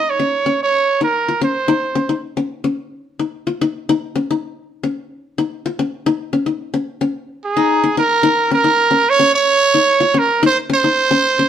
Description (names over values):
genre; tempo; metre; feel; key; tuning
afrobeat; 110 BPM; 4/4; straight; unclear; A4 = 440 Hz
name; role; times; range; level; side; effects
growling trumpet; melody; 0.0-2.2, 7.4-11.5 s; Ab4 to Eb5; -14 LUFS; right 4 dB; none
qanun; arpeggios; 0.0-11.5 s; Db4 to F4; -18 LUFS; left 4 dB; none
room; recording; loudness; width
moderate studio reverb, RT60 0.9 s; band playing live in one room; -14 LUFS; side -9 dB against mid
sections
0.0-8.2 A section; 8.2-11.5 B section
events
none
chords
0.0 Dbsus2